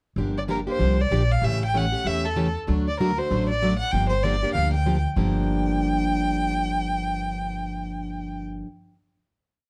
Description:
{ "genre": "acoustic string swing (jazz manouche)", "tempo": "193 BPM", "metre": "4/4", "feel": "swing 59% on 8ths", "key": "G minor", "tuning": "A4 = 440 Hz", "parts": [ { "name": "picked plugged-in steel-string acoustic guitar", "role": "accompaniment", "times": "0.2-8.7 s", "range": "G2 to G4", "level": "-29 LUFS", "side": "equal", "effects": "none" }, { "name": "upright bass", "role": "bass", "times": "0.2-8.6 s", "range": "G1 to E2", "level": "-28 LUFS", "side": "equal", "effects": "none" }, { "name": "warm violin", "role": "melody", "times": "0.4-8.4 s", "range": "A4 to G5", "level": "-29 LUFS", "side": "equal", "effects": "none" } ], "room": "light reverb", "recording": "dark, warm production", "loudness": "-24 LUFS", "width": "mono", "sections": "0.2-5.2 A section; 5.2-7.7 final chord", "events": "none", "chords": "0.2 Gm7; 1.4 A7; 2.7 D; 3.9 Gm7" }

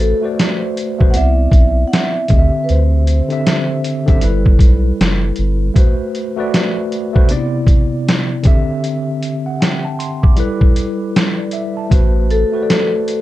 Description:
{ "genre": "lo-fi hip hop", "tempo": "78 BPM", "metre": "4/4", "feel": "swing 62% on 16ths", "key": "A dorian", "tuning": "A4 = 440 Hz", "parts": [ { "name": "vibraphone with soft mallets", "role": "melody", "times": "0.0-4.2, 12.3-13.2 s", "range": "A4 to F#5", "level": "-20 LUFS", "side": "left 1 dB", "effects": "plate reverb" }, { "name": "tine electric piano", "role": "accompaniment", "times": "0.0-13.2 s", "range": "C3 to D6", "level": "-19 LUFS", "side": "equal", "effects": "medium stereo tremolo, plate reverb" }, { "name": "soft dub sub bass", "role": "bass", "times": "0.0-5.7, 11.9-12.4 s", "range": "F#1 to D2", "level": "-14 LUFS", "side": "equal", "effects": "none" }, { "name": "trip hop sampler-style drum kit", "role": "drums", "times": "0.0-13.2 s", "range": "hi-hat, kick drum, snare drum", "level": "-13 LUFS", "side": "equal", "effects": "vintage 12-bit sampler grit" } ], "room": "light reverb", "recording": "dark, warm production", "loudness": "-12 LUFS", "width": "side -15 dB against mid", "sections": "0.0-13.2 A section", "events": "none", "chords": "0.0 Am69; 1.1 Cmaj9; 2.3 D9sus4; 4.2 G69; 5.8 Am69; 7.3 Cmaj9; 8.5 D9sus4; 10.4 G69; 11.9 Am69" }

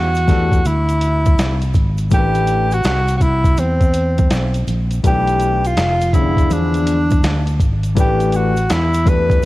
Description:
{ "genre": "hip hop, jazz-hop", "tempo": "82 BPM", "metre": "4/4", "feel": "swing 65% on 16ths", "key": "unclear", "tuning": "A4 = 439 Hz", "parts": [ { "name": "breathy alto saxophone", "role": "melody", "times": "0.0-9.5 s", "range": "C4 to B4", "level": "-19 LUFS", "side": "equal", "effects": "cassette tape" }, { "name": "fretless electric bass", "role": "bass", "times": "0.0-9.4 s", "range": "F1 to E2", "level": "-18 LUFS", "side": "equal", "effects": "none" }, { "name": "tube shaker and congas", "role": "percussion", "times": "0.1-9.5 s", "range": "none", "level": "-33 LUFS", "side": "right 8 dB", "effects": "none" }, { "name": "boom bap sampler-style drum kit", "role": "drums", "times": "0.2-9.4 s", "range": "hi-hat, kick drum, snare drum", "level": "-17 LUFS", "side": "equal", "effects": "cassette tape" }, { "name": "dark baby grand piano", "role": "accompaniment", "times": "0.3-9.5 s", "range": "D3 to B4", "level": "-23 LUFS", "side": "left 6 dB", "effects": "cassette tape" } ], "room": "light reverb, small room ambience", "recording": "home recording on cassette", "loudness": "-13 LUFS", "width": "side -18 dB against mid", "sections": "0.0-2.1 A section; 2.1-9.5 A section", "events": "none", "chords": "0.0 Am7; 2.1 Am9; 5.0 Bm7b5; 6.5 E7b9; 8.0 Asus2" }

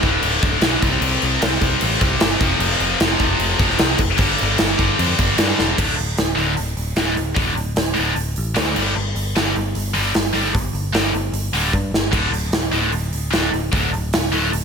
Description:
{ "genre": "hard rock", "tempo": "151 BPM", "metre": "4/4", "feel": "straight", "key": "D minor", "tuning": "A4 = 440 Hz", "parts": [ { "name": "scooped high-gain guitar", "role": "riff", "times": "0.0-14.5 s", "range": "D2 to C4", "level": "-20 LUFS", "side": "left 1 dB", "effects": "distortion" }, { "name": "picked electric bass", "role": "bass", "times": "0.0-14.6 s", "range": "D1 to G2", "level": "-24 LUFS", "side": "equal", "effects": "none" }, { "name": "big rock drum kit", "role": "drums", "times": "0.0-14.6 s", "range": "crash cymbal, hi-hat, kick drum, snare drum", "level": "-20 LUFS", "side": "equal", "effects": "none" } ], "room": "light reverb, small room ambience", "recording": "none", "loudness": "-16 LUFS", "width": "side -6 dB against mid", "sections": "0.0-5.8 A section; 5.8-14.6 B section", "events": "drum fill 5.6, 11.7-12.1", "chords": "0.0 D5; 0.8 C5; 2.4 F5; 4.2 G5; 5.8 D5; 8.8 G5; 12.1 D5" }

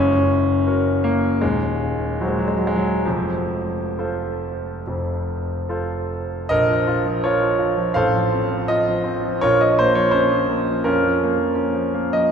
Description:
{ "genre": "classical, romantic character piece for solo piano", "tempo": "65-87 BPM", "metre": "4/4", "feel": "rubato", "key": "Bb minor", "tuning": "A4 = 440 Hz", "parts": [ { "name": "clear concert grand piano", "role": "solo", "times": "0.0-12.3 s", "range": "Eb1 to F5", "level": "-18 LUFS", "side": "equal", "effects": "none" } ], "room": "wet church reverb, RT60 3.3 s", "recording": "recorded in a church or concert hall", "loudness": "-18 LUFS", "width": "side -7 dB against mid", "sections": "0.0-6.5 A section; 6.5-12.3 B section", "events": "none", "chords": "0.0 Gb; 1.4 Cdim/Eb; 3.0 F; 6.5 Bbm; 8.0 F/A; 9.4 Bbm" }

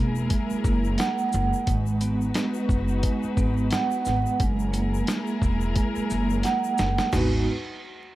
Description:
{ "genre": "hip hop, boom-bap hip-hop", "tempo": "88 BPM", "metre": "4/4", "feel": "swing 57% on 16ths", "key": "G# minor", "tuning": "A4 = 445 Hz", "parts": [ { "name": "vibraphone with soft mallets", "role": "accompaniment", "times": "0.0-7.4 s", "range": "G#3 to F#5", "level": "-26 LUFS", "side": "right 3 dB", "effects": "cassette tape, high-pass filter, low-pass filter" }, { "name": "warm studio string section", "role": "sustained chords", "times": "0.0-7.4 s", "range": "F#3 to B4", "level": "-35 LUFS", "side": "left 5 dB", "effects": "high-pass filter, low-pass filter" }, { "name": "upright bass", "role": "bass", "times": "0.0-7.5 s", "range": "E1 to G#1", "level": "-27 LUFS", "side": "equal", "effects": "none" }, { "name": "tube shaker", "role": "percussion", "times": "0.2-7.4 s", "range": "none", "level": "-46 LUFS", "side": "left 16 dB", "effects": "none" }, { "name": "dusty soul sampler-style drum kit", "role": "drums", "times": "0.3-7.3 s", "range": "crash cymbal, hi-hat, kick drum, shaker, snare drum, toms", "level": "-26 LUFS", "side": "equal", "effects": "none" } ], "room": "little or no reverb", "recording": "vinyl crackle", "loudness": "-22 LUFS", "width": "side -16 dB against mid", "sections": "0.0-1.7 A section; 1.7-7.1 B section; 7.1-8.2 C section", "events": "drum fill 6.4-7.1", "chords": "0.0 F#9; 1.7 G#m7; 4.4 F#9; 7.1 G#m7" }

